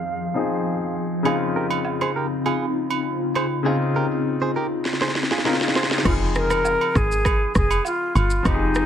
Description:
afrobeats; 100 BPM; 4/4; straight; F minor; A4 = 440 Hz
hollow concert flute; melody; 0.0-1.0, 6.1-8.9 s; Eb4 to F5; -24 LUFS; equal; low-pass filter, digital delay
clear concert grand piano; accompaniment; 0.0-8.9 s; Db3 to Bb4; -26 LUFS; left 4 dB; low-pass filter
glassy FM pad; sustained chords; 0.0-6.0 s; F2 to Ab4; -27 LUFS; left 2 dB; ensemble chorus, built-in reverb, tremolo, low-pass filter
direct-recorded clean electric guitar; riff; 1.3-5.9 s; F4 to C5; -27 LUFS; right 5 dB; low-pass filter, digital delay
agogo bells and woodblock; percussion; 1.3-8.6 s; -28 LUFS; right 8 dB
afro-pop drum kit; drums; 4.9-8.9 s; crash cymbal, kick drum, rim click, shaker, snare drum; -22 LUFS; equal; vintage 12-bit sampler grit
woody log drum bass; bass; 6.1-8.9 s; F1 to Ab1; -22 LUFS; equal
light reverb; -19 LUFS; side -9 dB against mid
0.0-6.1 A section; 6.1-8.9 B section
filter sweep 0.0-6.1; drum fill 4.9-6.1
0.0 Fm7; 1.3 Dbmaj9; 6.1 Fm7
0.05 0.65 | 1.25 1.85 2.45 3.05 | 3.65 4.25 4.85 5.45 | 6.05 6.65 7.25 7.85 | 8.45

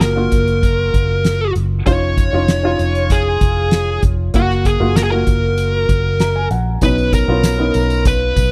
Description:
piano-driven pop; 97 BPM; 4/4; straight; F# major; A4 = 440 Hz
fuzz lead guitar; melody; 0.0-8.5 s; F#4 to C#5; -21 LUFS; equal; distortion
dark baby grand piano; accompaniment; 0.0-8.5 s; B2 to A#5; -24 LUFS; equal
vintage muted fingered electric bass; bass; 0.0-8.5 s; E#1 to B1; -20 LUFS; equal
soft-mallet drum kit; drums; 0.0-8.5 s; hi-hat, kick drum, snare drum; -20 LUFS; equal
tambourine; percussion; 6.8-8.5 s; -37 LUFS; equal
small room ambience; dry, close 1970s-style studio recording; -15 LUFS; mono
0.0-8.5 A section
grand piano fill 5.9-6.8
0.0 F#maj7; 1.9 C#add9/E#; 4.3 F#maj7; 6.8 Badd9
0.01 0.63 1.25 | 1.87 2.48 3.10 3.72 | 4.34 4.96 5.58 6.20 | 6.82 7.44 8.05

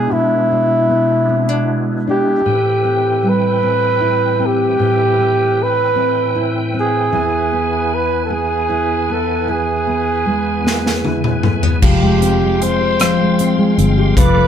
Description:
six-eight pop ballad; 51 BPM (dotted quarters); 6/8; straight; A4 = 440 Hz
mellow flugelhorn; melody; 0.0-14.5 s; E4 to C5; -16 LUFS; right 1 dB
nylon-string guitar; accompaniment; 0.0-14.5 s; A2 to G#4; -19 LUFS; left 1 dB
bright tonewheel organ; sustained chords; 0.0-14.5 s; E2 to D6; -21 LUFS; right 1 dB; chorus vibrato, slow rotary speaker
modern studio drum kit; drums; 10.7-14.4 s; crash cymbal, hi-hat, kick drum, rim click, snare drum, toms; -16 LUFS; left 1 dB
fingered electric bass; bass; 11.8-14.5 s; F1 to G1; -17 LUFS; equal
moderate small room reverb, RT60 0.5 s; band playing live in one room; -13 LUFS; side -8 dB against mid
0.0-11.8 A section; 11.8-14.5 B section
drum fill 10.7-11.8
0.0 E7/B; 2.4 Am7; 7.1 E; 11.8 Fmadd9
| 0.10 1.28 | 2.45 3.62 | 4.79 5.97 | 7.14 8.31 | 9.48 10.65 | 11.83 13.00 | 14.17

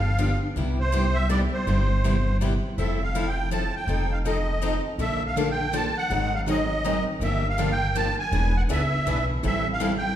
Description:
acoustic string swing (jazz manouche); 162 BPM; 3/4; swing 61% on 8ths; F major; A4 = 440 Hz
musette accordion; melody; 0.0-10.2 s; C5 to A5; -27 LUFS; right 2 dB
upright bass; bass; 0.0-10.2 s; E1 to Db2; -26 LUFS; equal
picked steel-string acoustic guitar; accompaniment; 0.2-9.9 s; C3 to A4; -30 LUFS; left 5 dB
picked steel-string acoustic guitar; accompaniment; 0.2-9.9 s; C3 to B4; -30 LUFS; right 2 dB
wet recital hall reverb, RT60 1.6 s; recorded in a church or concert hall; -22 LUFS; side -11 dB against mid
0.0-2.8 A section; 2.8-10.2 B section
0.0 G7; 0.6 Cmaj7; 2.8 Fmaj7; 3.9 F7; 5.0 Bbmaj7; 6.1 Ab7; 7.2 Gm7; 8.3 E7; 9.4 Am7
0.19 | 0.56 0.93 1.30 | 1.67 2.04 2.41 | 2.78 3.15 3.52 | 3.88 4.25 4.62 | 5.00 5.36 5.73 | 6.10 6.47 6.84 | 7.21 7.58 7.95 | 8.32 8.69 9.06 | 9.43 9.80

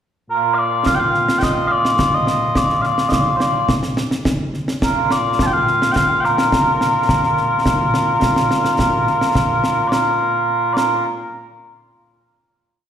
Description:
scottish traditional, Scottish pipe music; 106 BPM; 4/4; straight; Bb major; A4 = 439 Hz
mellow small bagpipes; melody; 0.3-11.0 s; Bb2 to A5; -16 LUFS; equal; plate reverb, slapback echo
concert snare drum and concert bass drum; drums; 0.9-11.0 s; -20 LUFS; equal; slapback echo
moderate club reverb, RT60 0.6 s; live gig heard through the venue's PA, recital hall reverb; -15 LUFS; side -9 dB against mid
0.0-0.9 pickup bar; 0.9-9.9 A section; 9.9-12.2 final note
0.30 | 0.86 1.43 2.00 2.56 | 3.13 3.69 4.26 4.83 | 5.39 5.96 6.52 7.09 | 7.66 8.22 8.79 9.35 | 9.92 10.49

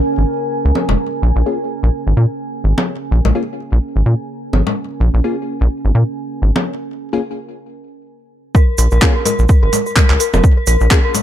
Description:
minimal techno; 127 BPM; 4/4; swing 57% on 16ths; Bb minor; A4 = 440 Hz
deep dark ambient pad; texture; 0.0-6.7 s; Db4 to Ab5; -23 LUFS; right 2 dB; chorus, built-in reverb, sidechain pumping
rubbery square bass; bass; 0.2-10.9 s; F1 to Bb2; -13 LUFS; equal; tube saturation, sidechain pumping
bongos and congas; percussion; 0.8-11.2 s; -19 LUFS; left 3 dB; digital delay
wavetable chord stab; stabs; 1.5-11.0 s; Bb3 to Ab4; -22 LUFS; left 4 dB; digital delay
dark detuned synth bell; riff; 8.5-11.1 s; Bb4; -19 LUFS; equal; chorus, phaser, sidechain pumping, dub echo
electronic kick drum; drums; 8.5-11.0 s; -11 LUFS; equal; overdrive
cabasa; percussion; 8.6-11.2 s; -26 LUFS; right 6 dB
garage drum kit; drums; 8.8-11.2 s; handclaps, hi-hat; -18 LUFS; right 1 dB; low-pass filter on hats, low-pass filter on snare, low-pass filter on room
digital ambience; dark, warm production; -13 LUFS; side -11 dB against mid
0.0-8.5 A section; 8.5-11.2 B section
filter sweep on synth stab 0.0-8.5; break 6.7-8.5; drop 8.5-11.2
0.0 Bbm7
0.04 0.52 | 0.99 1.46 1.93 2.41 | 2.88 3.35 3.82 4.30 | 4.77 5.24 5.71 6.18 | 6.66 7.13 7.60 8.07 | 8.55 9.02 9.49 9.96 | 10.44 10.91

